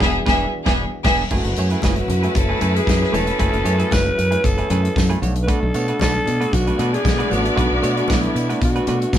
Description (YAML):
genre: disco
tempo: 115 BPM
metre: 4/4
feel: straight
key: F# minor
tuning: A4 = 436 Hz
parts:
  - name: breathy alto saxophone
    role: melody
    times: 0.0-9.2 s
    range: E4 to B4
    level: -23 LUFS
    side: equal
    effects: none
  - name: clear studio string section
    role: second line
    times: 0.0-9.2 s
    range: A3 to E5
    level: -24 LUFS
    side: left 1 dB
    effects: none
  - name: semi-hollow electric guitar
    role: accompaniment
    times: 0.0-9.2 s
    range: A3 to C#5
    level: -26 LUFS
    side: right 3 dB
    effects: none
  - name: mellow French horn section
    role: sustained chords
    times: 0.0-9.2 s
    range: E3 to B4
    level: -27 LUFS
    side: right 1 dB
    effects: none
  - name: fingered electric bass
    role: bass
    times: 0.0-9.2 s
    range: E1 to B2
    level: -21 LUFS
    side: equal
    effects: none
  - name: modern studio drum kit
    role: drums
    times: 0.0-9.2 s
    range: crash cymbal, hi-hat, kick drum, snare drum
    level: -22 LUFS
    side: equal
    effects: none
  - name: congas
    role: percussion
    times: 1.3-9.2 s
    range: none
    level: -31 LUFS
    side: left 4 dB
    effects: none
  - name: tambourine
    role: percussion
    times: 1.3-9.2 s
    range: none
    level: -37 LUFS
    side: right 7 dB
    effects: none
room: moderate small room reverb, RT60 0.5 s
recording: band playing live in one room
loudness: -16 LUFS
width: side -11 dB against mid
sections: 0.0-1.3 A section; 1.3-9.2 A section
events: band accent 0.0-1.3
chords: 0.0 E7; 1.3 F#m11; 5.2 Bm7